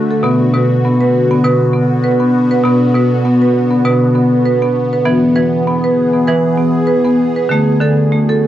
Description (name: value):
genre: world meditative, meditative tuned percussion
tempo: 99 BPM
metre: 4/4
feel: swing 54% on 16ths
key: unclear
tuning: A4 = 440 Hz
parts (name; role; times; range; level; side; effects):
- evolving wavetable pad; sustained chords; 0.0-8.5 s; D3 to G#4; -17 LUFS; left 2 dB; phaser, built-in reverb, cassette tape, plate reverb
- marimba with hard mallets; arpeggios; 0.0-8.5 s; B2 to B4; -11 LUFS; right 1 dB; cassette tape, plate reverb
room: wet booth ambience, RT60 0.2 s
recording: home recording on cassette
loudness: -10 LUFS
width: side -12 dB against mid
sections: 0.0-8.5 A section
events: none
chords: 0.2 Bm; 5.1 E; 7.5 D